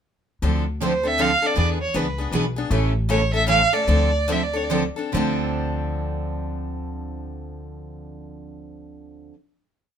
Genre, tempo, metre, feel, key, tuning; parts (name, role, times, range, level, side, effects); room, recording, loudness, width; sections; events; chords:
acoustic string swing (jazz manouche); 133-158 BPM; 3/4; swing 62% on 8ths; D minor; A4 = 440 Hz
picked steel-string acoustic guitar; accompaniment; 0.4-9.3 s; C#3 to A4; -28 LUFS; left 6 dB
picked steel-string acoustic guitar; accompaniment; 0.4-9.3 s; D3 to B4; -28 LUFS; right 5 dB
upright bass; bass; 0.4-9.3 s; A1 to E2; -25 LUFS; left 1 dB
warm violin; melody; 0.8-4.7 s; B4 to F5; -21 LUFS; right 3 dB
light reverb; minimal, uncompressed stereo recording; -19 LUFS; side -8 dB against mid
0.4-5.1 A section; 5.1-7.8 final chord
slowing down 2.7-5.1
0.4 Dm7; 1.6 E7; 2.7 A; 3.9 Dm7